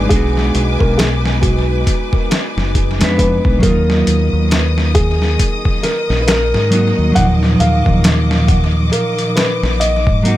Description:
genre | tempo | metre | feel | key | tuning
trip hop | 68 BPM | 4/4 | swing 59% on 16ths | Eb harmonic minor | A4 = 441 Hz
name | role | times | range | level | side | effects
mellow electric guitar | accompaniment | 0.0-10.4 s | Bb2 to B4 | -18 LUFS | right 1 dB | tremolo, tape echo
clear symphonic string section | sustained chords | 0.0-10.4 s | Eb3 to Eb6 | -24 LUFS | left 2 dB | none
deep dub fingered electric bass | bass | 0.0-10.4 s | F#1 to Ab2 | -16 LUFS | equal | tube saturation
bowed-like drone | texture | 0.0-3.7 s | Eb4 | -31 LUFS | left 3 dB | built-in reverb
felt-muted upright piano | melody | 0.1-10.4 s | F#4 to Gb5 | -20 LUFS | equal | tape echo
dusty soul sampler-style drum kit | drums | 0.1-10.4 s | hi-hat, kick drum, snare drum | -17 LUFS | equal | overdrive, tape echo
room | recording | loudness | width
light reverb | echo-heavy mix | -12 LUFS | side -14 dB against mid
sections
0.0-3.6 A section; 3.6-10.4 B section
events
none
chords
0.0 Bm6; 3.6 Ebmadd9

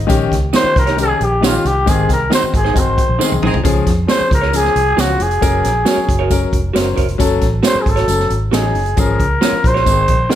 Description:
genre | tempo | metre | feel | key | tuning
uptempo 1960s-style soul | 135 BPM | 4/4 | straight | Db major | A4 = 442 Hz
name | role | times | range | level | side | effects
warm baby grand piano | accompaniment | 0.0-10.4 s | Eb3 to Eb5 | -20 LUFS | left 5 dB | none
vintage muted fingered electric bass | bass | 0.0-10.3 s | F1 to F2 | -19 LUFS | equal | none
swinging big-band drum kit | drums | 0.1-10.4 s | hi-hat, kick drum, snare drum, toms | -18 LUFS | right 1 dB | none
tambourine | percussion | 0.1-10.4 s | none | -29 LUFS | right 8 dB | none
electric guitar through a small old amp | stabs | 0.5-10.4 s | Eb4 to Db5 | -23 LUFS | right 5 dB | none
growling trumpet | melody | 0.6-10.3 s | F4 to C5 | -17 LUFS | equal | slapback echo
warm saxophone section | second line | 3.2-3.6, 10.3-10.4 s | C4 to Ab4 | -25 LUFS | right 1 dB | none
room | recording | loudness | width
moderate large studio reverb, RT60 1.3 s | none | -12 LUFS | side -11 dB against mid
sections
0.0-10.4 A section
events
band accent 1.9-3.6, 9.0-10.4; drum fill 3.2-3.6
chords
0.1 Eb7/Bb; 1.9 Ab; 3.6 Db; 5.4 Gb; 7.2 Gbm; 9.0 Db/Ab

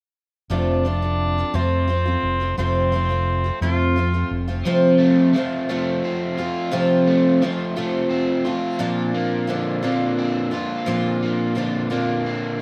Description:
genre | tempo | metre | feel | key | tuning
rock | 58 BPM (dotted quarters) | 6/8 | straight | unclear | A4 = 441 Hz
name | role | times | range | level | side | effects
bright tenor saxophone | melody | 0.5-4.4 s | C4 to F4 | -27 LUFS | equal | tape echo
picked twelve-string acoustic guitar | accompaniment | 0.5-12.6 s | F2 to F4 | -23 LUFS | equal | none
fingered electric bass | bass | 0.5-4.6 s | F1 to F2 | -24 LUFS | equal | none
crunchy overdriven guitar | riff | 4.7-12.6 s | Bb2 to F4 | -26 LUFS | equal | spring reverb
room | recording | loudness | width
moderate small room reverb, RT60 0.5 s | rough home demo mix | -21 LUFS | mono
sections
0.5-4.7 A section; 4.7-12.6 B section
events
none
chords
0.5 F; 8.8 Bbadd9

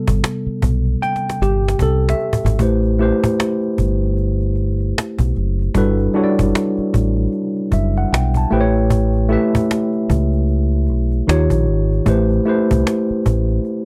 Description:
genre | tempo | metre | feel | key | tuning
R&B, neo-soul | 76 BPM | 4/4 | swing 61% on 16ths | A dorian | A4 = 440 Hz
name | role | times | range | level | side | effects
mellow tine electric piano | accompaniment | 0.0-13.8 s | C3 to A5 | -21 LUFS | equal | none
deep dub fingered electric bass | bass | 0.1-13.6 s | F#1 to D#2 | -20 LUFS | equal | none
cajon | drums | 0.1-13.8 s | none | -23 LUFS | equal | none
room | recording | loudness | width
little or no reverb | dry, close 1970s-style studio recording | -17 LUFS | mono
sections
0.0-2.6 A section; 2.6-13.8 B section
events
tine electric piano solo 0.0-2.6; drum fill 1.0-2.6; tine electric piano fill 7.3-8.9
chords
0.0 Am9; 5.7 Gmaj13; 8.5 A7; 11.3 D#9; 12.1 Am9

